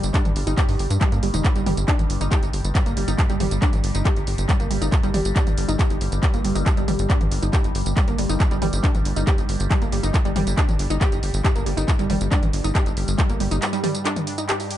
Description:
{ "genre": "driving peak-time techno", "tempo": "138 BPM", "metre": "4/4", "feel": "straight", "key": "unclear", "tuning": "A4 = 441 Hz", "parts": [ { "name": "tight sequencer bass", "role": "bass", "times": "0.0-13.6 s", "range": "F1 to G2", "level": "-24 LUFS", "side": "equal", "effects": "sidechain pumping" }, { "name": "overtone-sweeping drone", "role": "drone", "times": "0.0-14.8 s", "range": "G2 to G3", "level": "-31 LUFS", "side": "left 1 dB", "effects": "chorus, built-in reverb, phaser, sidechain pumping" }, { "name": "techno drum kit", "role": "drums", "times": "0.0-14.8 s", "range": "handclaps, hi-hat, tambourine, toms", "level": "-27 LUFS", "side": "equal", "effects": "sidechain pumping on hats, sidechain pumping on perc, sidechain pumping on toms, analog delay" }, { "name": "wide unison pluck", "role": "riff", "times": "0.1-14.6 s", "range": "G3 to G4", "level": "-27 LUFS", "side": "right 1 dB", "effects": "tube saturation, auto-pan, sidechain pumping, dub echo" }, { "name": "electronic kick drum", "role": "drums", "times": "0.1-13.3 s", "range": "none", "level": "-20 LUFS", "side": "equal", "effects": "none" } ], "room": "little or no reverb", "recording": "echo-heavy mix, nothing above 10.6 kHz", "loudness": "-18 LUFS", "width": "side -12 dB against mid", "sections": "0.0-14.8 A section", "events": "break 13.6-14.8", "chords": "0.0 G5" }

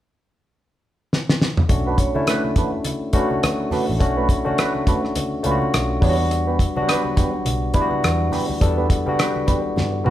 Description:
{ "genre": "lush 1970s-style soul", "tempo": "104 BPM", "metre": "4/4", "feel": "swing 58% on 16ths", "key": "B minor", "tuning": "A4 = 441 Hz", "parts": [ { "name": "damped 70s drum kit", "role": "drums", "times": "1.1-10.1 s", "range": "hi-hat, kick drum, rim click, snare drum, toms", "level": "-20 LUFS", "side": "equal", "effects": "none" }, { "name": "barky tine electric piano", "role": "accompaniment", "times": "1.7-10.1 s", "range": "F#3 to A4", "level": "-22 LUFS", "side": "left 2 dB", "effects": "none" }, { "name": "mellow electric guitar", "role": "riff", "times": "1.7-10.1 s", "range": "A3 to C#5", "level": "-27 LUFS", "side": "right 4 dB", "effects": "wah" }, { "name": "vintage muted fingered electric bass", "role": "bass", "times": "1.7-10.1 s", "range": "A1 to G2", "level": "-24 LUFS", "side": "equal", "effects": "none" }, { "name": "congas", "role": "percussion", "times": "1.7-9.9 s", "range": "none", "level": "-32 LUFS", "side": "right 2 dB", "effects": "none" }, { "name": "vibraphone with soft mallets", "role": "texture", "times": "2.0-3.8, 10.1 s", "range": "E4 to C#5", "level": "-30 LUFS", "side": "right 1 dB", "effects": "none" } ], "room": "moderate large studio reverb, RT60 1.1 s", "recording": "band playing live in one room", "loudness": "-18 LUFS", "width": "side -13 dB against mid", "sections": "0.0-1.7 A section; 1.7-10.1 B section", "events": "drum fill 1.1-1.7, 9.8-10.1", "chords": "0.0 N.C.; 1.7 Bm7; 6.0 Em7" }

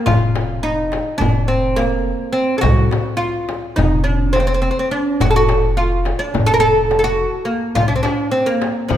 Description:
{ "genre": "Turkish makam ensemble", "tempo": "211 BPM (eighths)", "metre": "9/8", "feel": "straight", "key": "F makam hicaz", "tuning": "A4 = 438 Hz", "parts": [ { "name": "oud", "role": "melody", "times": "0.0-9.0 s", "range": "F3 to Bb4", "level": "-17 LUFS", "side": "equal", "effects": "none" }, { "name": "upright bass", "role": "bass", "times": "0.1-9.0 s", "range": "F1 to C2", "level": "-20 LUFS", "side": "equal", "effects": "none" }, { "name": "darbuka", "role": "percussion", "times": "0.1-9.0 s", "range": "none", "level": "-23 LUFS", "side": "left 1 dB", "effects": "none" }, { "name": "frame drum", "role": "percussion", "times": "0.1-9.0 s", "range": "none", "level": "-23 LUFS", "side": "left 4 dB", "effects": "none" } ], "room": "moderate scoring stage reverb, RT60 2.0 s", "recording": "minimal, uncompressed stereo recording", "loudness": "-15 LUFS", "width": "side -11 dB against mid", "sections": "0.0-9.0 A section", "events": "none", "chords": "none" }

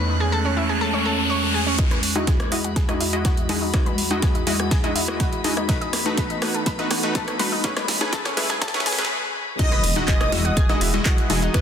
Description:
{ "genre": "progressive house", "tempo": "123 BPM", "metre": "4/4", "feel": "straight", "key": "E major", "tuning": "A4 = 440 Hz", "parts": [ { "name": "airy breathy pad", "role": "sustained chords", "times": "0.0-11.6 s", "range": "E2 to D#5", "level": "-28 LUFS", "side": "equal", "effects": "chorus, sidechain pumping" }, { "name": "analog pluck", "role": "arpeggios", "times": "0.0-11.6 s", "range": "C#4 to B5", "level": "-28 LUFS", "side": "left 1 dB", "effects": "chorus, cassette tape, sidechain pumping, ping-pong delay" }, { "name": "riser and impact", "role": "sound effects", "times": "0.0-1.8, 9.6-11.5 s", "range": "none", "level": "-27 LUFS", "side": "equal", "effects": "none" }, { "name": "drifting glass-harmonics texture", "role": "texture", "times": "0.0-9.1 s", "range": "B5 to F#6", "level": "-35 LUFS", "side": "left 3 dB", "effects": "chorus, built-in reverb, sidechain pumping" }, { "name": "supersaw stab", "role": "stabs", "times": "1.8-11.6 s", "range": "G#3 to D#5", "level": "-27 LUFS", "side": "left 1 dB", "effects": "sidechain pumping, low-pass filter, ping-pong delay" }, { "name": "electronic kick drum", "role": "drums", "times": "1.8-11.6 s", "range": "none", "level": "-21 LUFS", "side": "equal", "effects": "none" }, { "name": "pop drum kit", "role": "drums", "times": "1.8-11.6 s", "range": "crash cymbal, handclaps, hi-hat, snare drum", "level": "-26 LUFS", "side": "right 2 dB", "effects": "overdrive, high-pass filter on snare, low-pass filter on snare, high-pass filter on hats, low-pass filter on hats, high-pass filter on cymbals, low-pass filter on cymbals, high-pass filter on room, low-pass filter on room" }, { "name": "electronic rim click and congas", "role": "percussion", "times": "1.9-11.6 s", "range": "none", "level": "-29 LUFS", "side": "left 3 dB", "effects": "overdrive, soft clipping on snare, sidechain pumping on snare, sidechain pumping on perc" }, { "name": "plucky unison lead", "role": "melody", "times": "9.6-11.6 s", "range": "B4 to D#5", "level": "-29 LUFS", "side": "equal", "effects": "sidechain pumping, ping-pong delay" }, { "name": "warm symphonic violin section", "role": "second line", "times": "9.6-11.6 s", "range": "B5 to D#6", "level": "-32 LUFS", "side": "left 2 dB", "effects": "sidechain pumping, ping-pong delay" }, { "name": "dark detuned saw bass", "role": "bass", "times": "9.8-11.5 s", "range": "E1 to E2", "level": "-23 LUFS", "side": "equal", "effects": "sidechain pumping" } ], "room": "light reverb", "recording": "dense, heavily limited modern master, high-pass filter", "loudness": "-19 LUFS", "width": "side -8 dB against mid", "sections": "0.0-1.8 A section; 1.8-9.6 B section; 9.6-11.6 C section", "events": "riser 0.0-1.8; build-up 1.8-9.6; drum fill 1.8-9.1; filter sweep on synth pluck 1.8-9.6; filter sweep on supersaw synth 1.8-9.6; filter sweep on analog synth pad 1.8-9.6; filter sweep 1.8-9.6; stop 9.1-9.6; drop 9.6-11.6; impact 9.6-11.5", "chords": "0.0 Amaj7/E; 1.8 Emaj9; 5.7 B7/E; 7.6 Amaj9/E; 9.6 Emaj9" }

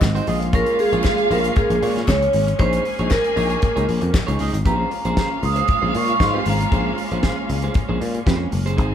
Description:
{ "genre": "disco", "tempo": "116 BPM", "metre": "4/4", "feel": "straight", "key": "Bb minor", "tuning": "A4 = 440 Hz", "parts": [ { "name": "vibraphone with medium hard mallets", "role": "melody", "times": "0.0-7.0 s", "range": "Ab4 to Eb6", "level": "-21 LUFS", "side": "right 1 dB", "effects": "none" }, { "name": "electric guitar at the edge of break-up", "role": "accompaniment", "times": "0.0-8.9 s", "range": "Db4 to Eb5", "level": "-28 LUFS", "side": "right 4 dB", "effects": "none" }, { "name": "rich studio string section", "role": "sustained chords", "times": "0.0-8.9 s", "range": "Ab3 to Gb4", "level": "-29 LUFS", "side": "equal", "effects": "none" }, { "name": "picked electric bass", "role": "bass", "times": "0.0-8.9 s", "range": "Gb1 to Bb2", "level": "-22 LUFS", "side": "left 1 dB", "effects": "none" }, { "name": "damped 70s drum kit", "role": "drums", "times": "0.0-8.9 s", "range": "hi-hat, kick drum, snare drum", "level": "-22 LUFS", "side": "left 1 dB", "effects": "none" }, { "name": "group handclap", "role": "percussion", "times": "0.0-4.3 s", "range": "none", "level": "-34 LUFS", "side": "left 4 dB", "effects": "none" }, { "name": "warm studio violin section", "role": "second line", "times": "0.3-8.9 s", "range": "F4 to Ab5", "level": "-27 LUFS", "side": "right 1 dB", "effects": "none" } ], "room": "light reverb", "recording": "band playing live in one room", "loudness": "-17 LUFS", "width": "side -9 dB against mid", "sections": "0.0-4.7 A section; 4.7-8.9 B section", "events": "none", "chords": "0.3 Bbm11; 4.7 Bbm9" }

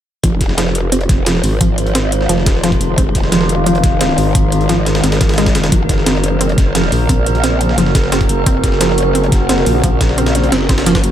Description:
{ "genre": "dark technical drum and bass", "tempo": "175 BPM", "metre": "4/4", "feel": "straight", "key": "F phrygian", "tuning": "A4 = 439 Hz", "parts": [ { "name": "metallic inharmonic drone", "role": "sustained chords", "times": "1.4-11.1 s", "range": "Db3 to C5", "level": "-18 LUFS", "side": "equal", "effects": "chorus, built-in reverb, phaser, vintage 12-bit sampler grit, sidechain pumping" }, { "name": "wide unison pluck", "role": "arpeggios", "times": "0.2-11.0 s", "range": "F3 to C4", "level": "-19 LUFS", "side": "right 1 dB", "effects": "cassette tape, sidechain pumping, digital delay" }, { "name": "growl bass", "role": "bass", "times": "0.2-11.1 s", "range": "F1 to Bb1", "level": "-16 LUFS", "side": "equal", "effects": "distortion, chorus, tube saturation" }, { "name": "breakbeat sampler-style drum kit", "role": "drums", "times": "0.2-11.1 s", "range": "hi-hat, snare drum", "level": "-22 LUFS", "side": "equal", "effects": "high-pass filter on hats, high-pass filter on snare, high-pass filter on room" }, { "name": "electronic hi-hat", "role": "drums", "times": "0.2-11.1 s", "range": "none", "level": "-21 LUFS", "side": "equal", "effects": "none" }, { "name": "electronic kick drum", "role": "drums", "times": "0.2-11.0 s", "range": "none", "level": "-15 LUFS", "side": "equal", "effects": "none" } ], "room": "light reverb", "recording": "none", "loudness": "-11 LUFS", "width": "side -10 dB against mid", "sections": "0.2-11.1 A section", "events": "filter sweep on synth arpeggio sound 0.2-11.1", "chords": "0.2 Fm7; 5.7 Gb" }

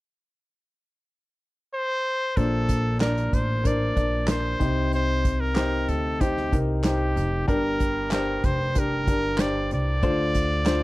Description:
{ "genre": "piano-driven pop", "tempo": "94 BPM", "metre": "4/4", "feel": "straight", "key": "Bb major", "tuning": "A4 = 441 Hz", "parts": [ { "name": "brilliant trumpet", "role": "melody", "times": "1.7-10.8 s", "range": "G4 to D5", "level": "-28 LUFS", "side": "equal", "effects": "slapback echo" }, { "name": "clear grand piano", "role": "accompaniment", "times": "2.4-10.8 s", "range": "G2 to D5", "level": "-26 LUFS", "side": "left 2 dB", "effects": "none" }, { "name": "upright bass", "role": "bass", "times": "2.4-10.8 s", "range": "F1 to D2", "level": "-27 LUFS", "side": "equal", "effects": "none" }, { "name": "unplugged drum kit", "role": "drums", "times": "2.4-10.8 s", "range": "handclaps, hi-hat, kick drum, snare drum", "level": "-26 LUFS", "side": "equal", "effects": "none" } ], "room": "little or no reverb", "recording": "dry, close 1970s-style studio recording", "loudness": "-22 LUFS", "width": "side -19 dB against mid", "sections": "0.0-2.4 A section; 2.4-10.8 B section", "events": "none", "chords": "0.0 N.C.; 2.4 Bbadd9; 4.6 Cm; 7.5 Gm; 10.0 Dm7" }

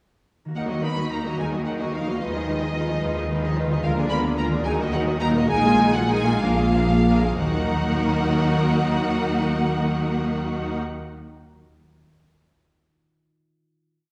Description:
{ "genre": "cinematic, playful, whimsical film cue", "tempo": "60-74 BPM (dotted quarters)", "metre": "6/8", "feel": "straight", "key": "Eb minor", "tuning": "A4 = 440 Hz", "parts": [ { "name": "rich studio viola section", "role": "accompaniment", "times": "0.5-10.7 s", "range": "F3 to Gb4", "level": "-29 LUFS", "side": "equal", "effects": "none" }, { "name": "concert harp", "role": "arpeggios", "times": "0.5-11.3 s", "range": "Bb2 to Eb5", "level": "-35 LUFS", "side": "equal", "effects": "none" }, { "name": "warm studio violin section", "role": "melody", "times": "0.6-10.8 s", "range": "Eb5 to Cb6", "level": "-31 LUFS", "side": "equal", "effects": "none" }, { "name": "rich studio violin section", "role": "second line", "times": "0.6-10.7 s", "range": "Eb4 to Eb5", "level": "-33 LUFS", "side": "equal", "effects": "none" }, { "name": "dark French horn section", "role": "sustained chords", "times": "0.6-10.8 s", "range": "Eb3 to Cb4", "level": "-30 LUFS", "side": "equal", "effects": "none" }, { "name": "rich studio cello section", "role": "bass", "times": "0.6-10.8 s", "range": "Bb2 to Eb3", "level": "-30 LUFS", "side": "equal", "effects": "none" }, { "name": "rich studio double bass section", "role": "bass", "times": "0.6-10.8 s", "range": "Bb1 to Eb2", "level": "-30 LUFS", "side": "equal", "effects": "none" } ], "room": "wet scoring stage reverb, RT60 1.6 s", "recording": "heard from further back in the room", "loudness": "-22 LUFS", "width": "mono", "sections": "0.6-7.4 A section; 7.4-11.3 final chord", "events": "slowing down 3.0-7.4", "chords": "0.6 Ebm; 2.2 Fm7b5/Eb; 3.8 Bb7/D; 4.6 Ebm; 5.5 Bb7sus4; 6.4 Bb7; 7.4 Ebm" }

